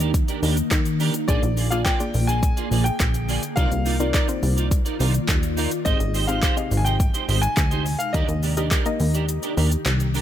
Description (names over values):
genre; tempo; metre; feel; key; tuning
dance-pop; 105 BPM; 4/4; straight; Eb major; A4 = 440 Hz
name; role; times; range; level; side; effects
clear grand piano; melody; 0.0-9.8 s; D5 to Ab5; -29 LUFS; left 2 dB; tape echo
soft round pluck; accompaniment; 0.0-9.5 s; Bb3 to Eb5; -30 LUFS; left 3 dB; chorus, sidechain pumping
ethereal airy pad; sustained chords; 0.0-10.2 s; C3 to D5; -30 LUFS; left 2 dB; ensemble chorus, built-in reverb, sidechain pumping
clean electric guitar; riff; 0.0-10.2 s; Bb3 to Eb5; -29 LUFS; right 8 dB; ensemble chorus
plucky analog bass; bass; 0.0-10.2 s; Ab1 to Eb3; -22 LUFS; equal; sidechain pumping
deep house drum kit; drums; 0.0-10.2 s; handclaps, hi-hat, kick drum, shaker, snare drum; -24 LUFS; equal; none
egg shaker; percussion; 0.0-10.2 s; none; -39 LUFS; left 17 dB; none
room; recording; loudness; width
digital ambience; none; -19 LUFS; side -11 dB against mid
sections
0.0-10.2 A section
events
kick muted 9.3-10.2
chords
0.0 Ebmaj7; 1.3 Bb7; 3.6 Cm11; 5.9 Abmaj7; 8.1 Ebmaj7